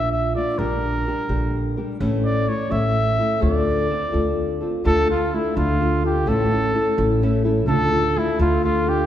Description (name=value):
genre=mexican folk, mariachi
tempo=85 BPM (dotted quarters)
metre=6/8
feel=straight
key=D minor, D harmonic minor from 4.8 s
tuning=A4 = 440 Hz
part: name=warm trumpet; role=melody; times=0.0-9.1 s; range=E4 to E5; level=-23 LUFS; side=right 1 dB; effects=none
part: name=flamenco guitar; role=accompaniment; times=0.0-9.1 s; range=A2 to Bb4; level=-22 LUFS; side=left 2 dB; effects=none
part: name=upright bass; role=bass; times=0.0-9.1 s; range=A1 to D2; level=-23 LUFS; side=right 1 dB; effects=none
room=wet scoring stage reverb, RT60 1.8 s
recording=recorded in a church or concert hall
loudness=-18 LUFS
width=side -11 dB against mid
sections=0.0-4.8 A section; 4.8-9.1 B section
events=none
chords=0.0 Bb; 0.6 Gm/Bb; 2.0 A; 3.4 Dm7; 4.8 Dm; 6.3 A; 7.7 Dm